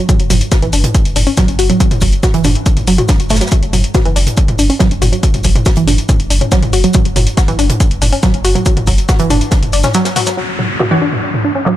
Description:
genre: driving peak-time techno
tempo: 140 BPM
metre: 4/4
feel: straight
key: unclear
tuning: A4 = 441 Hz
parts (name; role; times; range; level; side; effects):
- analog pluck; riff; 0.0-11.7 s; E3 to F#4; -16 LUFS; equal; chorus, sidechain pumping, ping-pong delay
- electronic kick drum; drums; 0.1-9.6 s; none; -13 LUFS; equal; none
- open jazz drum kit; drums; 0.1-10.4 s; hi-hat, shaker, snare drum; -23 LUFS; equal; high-pass filter on hats, high-pass filter on snare, high-pass filter on perc, high-pass filter on room
- techno drum kit; drums; 0.1-11.7 s; handclaps, hi-hat, toms; -18 LUFS; equal; sidechain pumping on hats, low-pass filter on hats, sidechain pumping on toms, low-pass filter on toms, low-pass filter on snare, low-pass filter on room
- saturated sub bass; bass; 0.2-9.8 s; F#1; -16 LUFS; equal; tube saturation, sidechain pumping, low-pass filter
- downlifter; sound effects; 10.4-11.8 s; none; -19 LUFS; left 1 dB; none
- rave stab; stabs; 10.9-11.0 s; C#4 to C#5; -22 LUFS; right 1 dB; chorus, built-in reverb, sidechain pumping, digital delay
room: little or no reverb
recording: none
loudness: -10 LUFS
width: side -13 dB against mid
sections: 0.0-10.4 A section; 10.4-11.8 B section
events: filter sweep on synth arpeggio sound 0.0-10.4; kick drops out 9.9-10.4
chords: 0.0 F#5

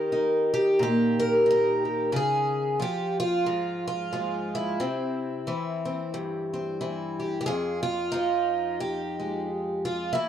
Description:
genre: folk, solo fingerstyle acoustic guitar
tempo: 90 BPM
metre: 4/4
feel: swing 57% on 8ths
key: F minor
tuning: A4 = 439 Hz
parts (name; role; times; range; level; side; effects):
- picked twelve-string acoustic guitar; solo; 0.0-10.3 s; F2 to Bb4; -24 LUFS; equal; none
room: moderate studio ambience, RT60 0.5 s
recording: dark, warm production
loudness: -24 LUFS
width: side -10 dB against mid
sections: 0.0-7.5 A section; 7.5-10.3 B section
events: none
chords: 0.0 Eb; 2.1 Dbadd9; 4.8 C; 7.5 Fm7

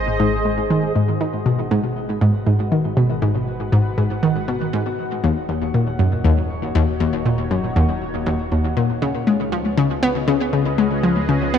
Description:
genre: ambient, sequencer-driven space music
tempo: 119 BPM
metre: 4/4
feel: straight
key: G# dorian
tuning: A4 = 443 Hz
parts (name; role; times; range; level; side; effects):
- sweeping resonant pad; sustained chords; 0.0-11.6 s; G#3 to F#5; -28 LUFS; equal; chorus
- fat analog bass; bass; 0.0-11.6 s; Ab1 to C#2; -32 LUFS; equal; none
- analog pluck; riff; 0.2-11.6 s; D#2 to B3; -18 LUFS; left 1 dB; chorus, tape echo
- concert harp; arpeggios; 1.0-11.6 s; E#4 to C#6; -32 LUFS; moving between left 7 dB and equal; auto-pan, tape echo
room: moderate cathedral reverb, RT60 5.6 s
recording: in a vast, echoing space, cassette tape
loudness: -17 LUFS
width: side -8 dB against mid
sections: 1.0-11.6 A section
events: fade-in on harp 1.0-11.6; fade-in on analog synth pad 1.0-11.6; fade-in on analog synth bass 1.0-11.6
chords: 0.0 Ab; 1.0 G#m7; 5.0 D#m7; 9.0 C#7

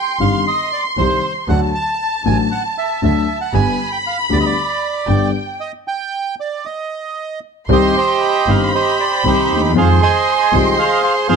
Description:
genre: tango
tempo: 117 BPM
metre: 4/4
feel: rubato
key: C harmonic minor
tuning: A4 = 442 Hz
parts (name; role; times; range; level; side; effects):
- bandoneon; melody; 0.0-11.4 s; Eb4 to A5; -18 LUFS; right 5 dB; plate reverb
- warm studio violin section; second line; 0.0-11.4 s; G5 to C6; -20 LUFS; equal; none
- warm grand piano; accompaniment; 0.2-11.4 s; G1 to G4; -18 LUFS; left 7 dB; none
- clear double bass; bass; 0.2-11.4 s; G1 to F2; -18 LUFS; right 2 dB; none
room: moderate studio ambience, RT60 0.5 s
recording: dark, warm production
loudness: -14 LUFS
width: side -6 dB against mid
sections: 0.0-7.7 A section; 7.7-11.4 A section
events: stop 5.6-7.7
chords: 0.0 Cm; 1.5 D; 3.5 G; 5.6 N.C.; 7.7 Cm; 9.8 Fm7

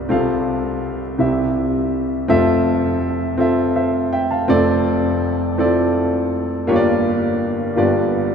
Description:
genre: gospel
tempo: 55 BPM (dotted quarters)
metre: 6/8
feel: straight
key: F major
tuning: A4 = 440 Hz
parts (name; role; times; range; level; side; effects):
- warm concert grand piano; solo; 0.0-8.3 s; F1 to A5; -16 LUFS; equal; none
room: wet cathedral reverb, RT60 5.0 s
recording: recorded in a church or concert hall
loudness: -16 LUFS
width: side -7 dB against mid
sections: 0.0-2.3 A section; 2.3-8.3 B section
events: none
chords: 0.1 F/C; 1.2 C; 2.3 Fmaj7; 4.5 Dm7/F; 6.7 Gm7; 7.8 G7

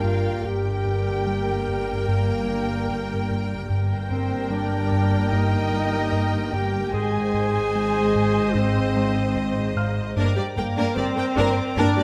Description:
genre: cinematic, suspense film score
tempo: 74 BPM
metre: 4/4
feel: straight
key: G phrygian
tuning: A4 = 440 Hz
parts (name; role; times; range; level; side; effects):
- clear symphonic violin section; melody; 0.0-12.0 s; Bb4 to G5; -35 LUFS; equal; none
- clear clarinet; second line; 0.0-12.0 s; Bb3 to Ab4; -29 LUFS; equal; none
- warm symphonic violin section; second line; 0.0-12.0 s; Bb4 to Ab5; -34 LUFS; equal; none
- rich symphonic viola section; accompaniment; 0.0-12.0 s; Ab3 to C5; -32 LUFS; equal; none
- glass harmonica; sustained chords; 0.0-12.0 s; G4 to G5; -36 LUFS; equal; none
- round analog bass; riff; 0.0-12.0 s; G2 to Ab3; -29 LUFS; equal; none
- rich symphonic cello section; bass; 0.0-12.0 s; G2 to Ab2; -30 LUFS; equal; none
- rich symphonic double bass section; bass; 0.0-11.9 s; G1 to Ab1; -32 LUFS; equal; none
- felt-muted upright piano; texture; 0.0-3.7, 9.0-12.0 s; C5 to F6; -38 LUFS; equal; none
- rich symphonic violin section; texture; 3.7-12.0 s; Bb5 to Bb6; -42 LUFS; equal; none
room: moderate scoring stage reverb, RT60 1.5 s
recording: close, detailed microphones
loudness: -23 LUFS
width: mono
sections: 0.0-12.0 A section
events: none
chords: 0.0 Gm; 3.7 Eb/G; 6.9 Ab; 10.2 Gm

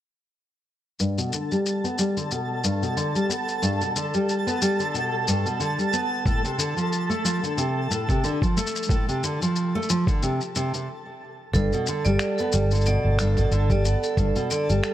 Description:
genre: folktronica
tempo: 91 BPM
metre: 4/4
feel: swing 56% on 16ths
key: unclear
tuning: A4 = 442 Hz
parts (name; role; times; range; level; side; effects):
- nylon-string guitar; arpeggios; 1.0-14.9 s; G2 to B3; -25 LUFS; equal; low-pass filter, tape echo
- electronic shaker and finger snaps; drums; 1.0-14.9 s; none; -30 LUFS; left 4 dB; none
- twinkling granular texture; texture; 1.3-14.9 s; A4 to A5; -31 LUFS; equal; built-in reverb
- electronic kick drum; drums; 6.3-14.3 s; none; -24 LUFS; equal; none
- vibraphone with hard mallets; second line; 11.5-14.9 s; A4 to D5; -26 LUFS; right 4 dB; digital delay
- fingered electric bass; bass; 11.5-14.8 s; G1; -22 LUFS; equal; none
room: light reverb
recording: none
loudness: -22 LUFS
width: side -12 dB against mid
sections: 1.0-11.5 A section; 11.5-14.9 B section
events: filter sweep on nylon-string guitar 1.0-11.5; stop 10.9-11.5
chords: 1.0 G; 6.3 Dm7; 11.5 G

